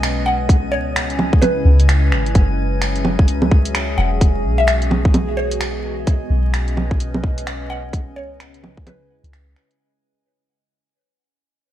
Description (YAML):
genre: future garage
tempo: 129 BPM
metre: 4/4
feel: swing 61% on 16ths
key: unclear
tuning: A4 = 440 Hz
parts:
  - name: warbly tape-like pad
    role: sustained chords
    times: 0.0-9.8 s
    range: B2 to E5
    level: -26 LUFS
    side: right 1 dB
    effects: chorus, built-in reverb, phaser, sidechain pumping
  - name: soft 808-style bass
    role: bass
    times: 0.0-9.5 s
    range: E1 to E2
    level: -19 LUFS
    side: equal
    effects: sidechain pumping
  - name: garage drum kit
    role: drums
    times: 0.0-9.8 s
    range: bongos, finger snaps, hi-hat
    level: -22 LUFS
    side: right 2 dB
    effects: vintage 12-bit sampler grit, gated reverb
  - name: drifting glass-harmonics texture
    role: texture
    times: 0.0-9.8 s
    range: G#3 to G#5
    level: -30 LUFS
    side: left 4 dB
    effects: chorus, built-in reverb
  - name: mallet-like synth pluck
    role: melody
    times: 0.3-9.3 s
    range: B4 to F#5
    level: -23 LUFS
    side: left 1 dB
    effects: lush chorus, ping-pong delay
  - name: electronic kick drum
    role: drums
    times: 0.5-8.8 s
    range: none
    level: -15 LUFS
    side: equal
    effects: overdrive, vintage 12-bit sampler grit
room: little or no reverb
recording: bright 1980s-style digital production, vinyl crackle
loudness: -15 LUFS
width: side -12 dB against mid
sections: 0.0-9.8 A section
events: fade-out 4.8-9.8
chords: 0.5 C#m7; 2.4 F#5; 4.2 Emaj9; 6.1 B; 7.9 C#m7